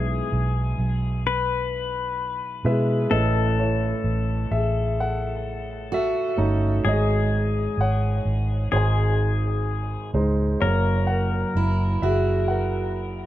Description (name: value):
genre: acoustic folk-pop ballad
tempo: 64 BPM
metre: 4/4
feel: straight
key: unclear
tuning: A4 = 441 Hz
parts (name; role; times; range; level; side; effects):
- dark grand piano; melody; 0.0-13.3 s; F#1 to G#5; -26 LUFS; equal; plate reverb, tape echo
- pedal steel guitar; second line; 0.0-13.3 s; G#4 to B4; -29 LUFS; left 7 dB; none
- vintage muted fingered electric bass; bass; 0.0-13.3 s; F#1 to B2; -24 LUFS; equal; none
- picked steel-string acoustic guitar; arpeggios; 5.9-13.3 s; E4 to F#4; -27 LUFS; right 5 dB; tape echo
room: light reverb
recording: none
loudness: -21 LUFS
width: side -13 dB against mid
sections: 0.0-13.3 A section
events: none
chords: 0.0 E/B; 3.1 Aadd9; 6.9 G#sus4; 8.7 G#; 10.6 F#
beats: 0.33 1.26 2.19 | 3.12 4.05 4.98 5.92 | 6.85 7.79 8.73 9.67 | 10.62 11.56 12.50